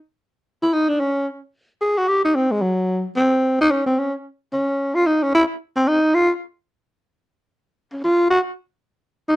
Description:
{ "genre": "jazz", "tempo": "222 BPM", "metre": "4/4", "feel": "swing 60% on 8ths", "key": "unclear", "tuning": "A4 = 441 Hz", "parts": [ { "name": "growling tenor saxophone", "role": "solo", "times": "0.6-9.4 s", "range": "Gb3 to Ab4", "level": "-17 LUFS", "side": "equal", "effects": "slapback echo" } ], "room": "moderate booth ambience, RT60 0.3 s", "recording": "dry, close 1970s-style studio recording", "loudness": "-17 LUFS", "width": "side -18 dB against mid", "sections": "0.0-1.5 A section; 1.5-9.4 B section", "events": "none", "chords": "none" }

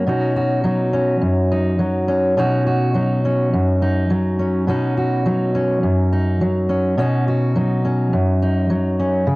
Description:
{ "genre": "folk", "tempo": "104 BPM", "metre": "4/4", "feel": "straight", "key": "unclear", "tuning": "A4 = 441 Hz", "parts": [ { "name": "fingerpicked steel-string acoustic guitar", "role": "solo", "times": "0.0-9.4 s", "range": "F#2 to F#4", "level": "-16 LUFS", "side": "equal", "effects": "none" } ], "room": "moderate spring reverb, RT60 1.9 s, small room reverb", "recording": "home recording on cassette", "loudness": "-16 LUFS", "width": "side -22 dB against mid", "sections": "0.0-9.3 A section", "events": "none", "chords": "0.1 Badd9" }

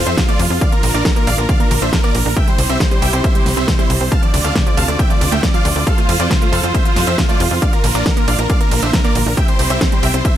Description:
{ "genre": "uplifting trance", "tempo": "137 BPM", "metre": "4/4", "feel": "straight", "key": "unclear", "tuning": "A4 = 440 Hz", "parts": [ { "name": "big supersaw lead", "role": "melody", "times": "0.0-10.3 s", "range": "E4 to A5", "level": "-20 LUFS", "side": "equal", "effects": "sidechain pumping, ping-pong delay" }, { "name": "clear studio string section", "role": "sustained chords", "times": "0.0-10.4 s", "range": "C3 to C5", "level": "-24 LUFS", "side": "equal", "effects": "sidechain pumping" }, { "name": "wide unison pluck", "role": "arpeggios", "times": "0.0-10.3 s", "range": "C3 to D4", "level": "-24 LUFS", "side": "right 2 dB", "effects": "sidechain pumping, ping-pong delay" }, { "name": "tight sequencer bass", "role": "bass", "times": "0.0-10.2 s", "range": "Bb1 to F2", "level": "-18 LUFS", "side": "equal", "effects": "tube saturation, sidechain pumping" }, { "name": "big-room dance drum kit", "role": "drums", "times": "0.1-10.3 s", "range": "hi-hat, ride cymbal, snare drum", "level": "-22 LUFS", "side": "right 2 dB", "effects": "none" }, { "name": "electronic kick drum", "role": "drums", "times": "0.2-10.3 s", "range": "none", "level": "-16 LUFS", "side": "equal", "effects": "overdrive" } ], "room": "digital ambience", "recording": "none", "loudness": "-12 LUFS", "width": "side -11 dB against mid", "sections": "0.0-10.4 A section", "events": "none", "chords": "0.0 F; 0.6 Bb; 2.4 C; 4.1 Dm7; 5.9 F; 7.6 Bb; 9.4 C" }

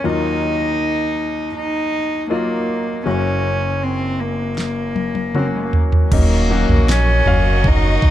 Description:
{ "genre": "pop ballad", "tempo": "79 BPM", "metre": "4/4", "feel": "straight", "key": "unclear", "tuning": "A4 = 442 Hz", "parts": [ { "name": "warm cello", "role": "melody", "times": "0.0-8.1 s", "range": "Ab3 to Eb4", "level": "-20 LUFS", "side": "right 1 dB", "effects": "none" }, { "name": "clear grand piano", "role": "accompaniment", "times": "0.0-8.1 s", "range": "Gb1 to F5", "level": "-22 LUFS", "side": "left 2 dB", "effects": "none" }, { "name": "smooth R&B drum kit", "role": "drums", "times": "4.6-8.1 s", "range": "crash cymbal, kick drum, snare drum, toms", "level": "-17 LUFS", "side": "right 1 dB", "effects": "none" }, { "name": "warm studio string section", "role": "sustained chords", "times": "6.1-8.1 s", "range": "Gb4 to Db6", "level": "-27 LUFS", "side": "left 2 dB", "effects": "none" }, { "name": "sub bass with octave", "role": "bass", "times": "6.1-8.1 s", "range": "Eb1 to Bb1", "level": "-16 LUFS", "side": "equal", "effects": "none" } ], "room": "light reverb, small room ambience", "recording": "dark, warm production", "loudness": "-16 LUFS", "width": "side -12 dB against mid", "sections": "0.0-6.1 A section; 6.1-8.1 B section", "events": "drum fill 4.6-6.1", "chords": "0.0 Ebmadd9; 3.1 Gb; 6.1 Ebm7" }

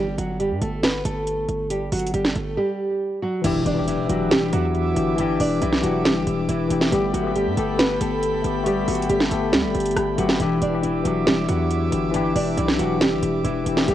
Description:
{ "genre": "hip hop, trap", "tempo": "138 BPM", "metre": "4/4", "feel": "half-time", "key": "E minor", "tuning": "A4 = 442 Hz", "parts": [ { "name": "nylon-string guitar", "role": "melody", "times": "0.0-13.9 s", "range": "E3 to D5", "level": "-24 LUFS", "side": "right 1 dB", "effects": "low-pass filter, cassette tape" }, { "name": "distorted 808-style bass", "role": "bass", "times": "0.0-13.9 s", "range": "E1 to G2", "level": "-27 LUFS", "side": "right 1 dB", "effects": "distortion" }, { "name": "trap drum kit", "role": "drums", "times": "0.2-13.9 s", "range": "crash cymbal, hi-hat, rim click, snare drum", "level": "-23 LUFS", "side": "right 1 dB", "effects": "overdrive, cassette tape" }, { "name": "bright tine electric piano", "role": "accompaniment", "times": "3.4-13.9 s", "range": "E3 to G4", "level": "-24 LUFS", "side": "left 6 dB", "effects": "medium tremolo, low-pass filter" }, { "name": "airy breathy pad", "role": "sustained chords", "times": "3.6-13.9 s", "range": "E4 to D6", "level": "-30 LUFS", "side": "right 3 dB", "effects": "chorus" }, { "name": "impact", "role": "sound effects", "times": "3.4-5.2 s", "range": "none", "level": "-33 LUFS", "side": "right 1 dB", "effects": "none" } ], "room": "light reverb, digital ambience", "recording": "home recording on cassette", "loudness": "-19 LUFS", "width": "side -12 dB against mid", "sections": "0.0-3.4 A section; 3.4-13.9 B section", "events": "break 0.0-3.4; impact 3.4-5.2", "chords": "0.0 Gsus2; 3.4 Em7; 6.9 Gadd9; 10.4 Em7" }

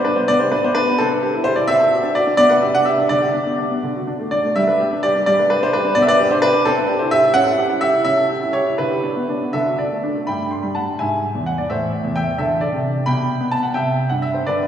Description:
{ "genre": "classical-period piano sonatina", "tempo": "80-88 BPM (dotted quarters)", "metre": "6/8", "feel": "rubato", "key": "G major", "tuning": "A4 = 441 Hz", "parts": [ { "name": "clear baby grand piano", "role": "solo", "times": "0.0-14.7 s", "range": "E2 to C6", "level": "-16 LUFS", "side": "equal", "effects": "none" } ], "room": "wet church reverb, RT60 2.8 s", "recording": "studio reverb", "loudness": "-16 LUFS", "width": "side -9 dB against mid", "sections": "0.0-10.3 A section; 10.3-14.7 B section", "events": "none", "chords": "0.3 G/B; 1.0 Am7/C; 1.7 D7/C; 2.4 G/B; 3.1 G/D; 3.8 D; 4.6 G; 6.0 G/B; 6.7 Am7/C; 7.3 A7/C#; 8.8 G/D; 9.5 D; 10.3 Gmaj9; 11.0 E/G#; 11.7 Am; 12.4 D5; 13.1 G/B; 13.8 C" }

